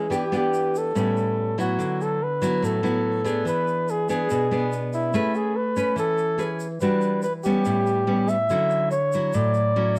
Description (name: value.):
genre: bossa nova.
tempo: 143 BPM.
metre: 4/4.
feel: straight.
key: A major.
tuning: A4 = 440 Hz.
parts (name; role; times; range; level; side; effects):
breathy flugelhorn; melody; 0.0-10.0 s; E4 to E5; -26 LUFS; equal; none.
nylon-string guitar; accompaniment; 0.0-10.0 s; A2 to B4; -26 LUFS; equal; none.
egg shaker; percussion; 0.1-10.0 s; none; -49 LUFS; equal; none.
room: light reverb.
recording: worn, warbling old tape, cassette tape, warbly pitch drift.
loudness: -23 LUFS.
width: mono.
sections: 0.0-1.8 A section; 1.8-10.0 B section.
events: none.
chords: 0.1 Em7; 0.9 A9; 1.8 D69; 3.5 E7; 5.1 Amaj9; 6.8 Em9; 7.7 A9; 8.5 Dmaj9.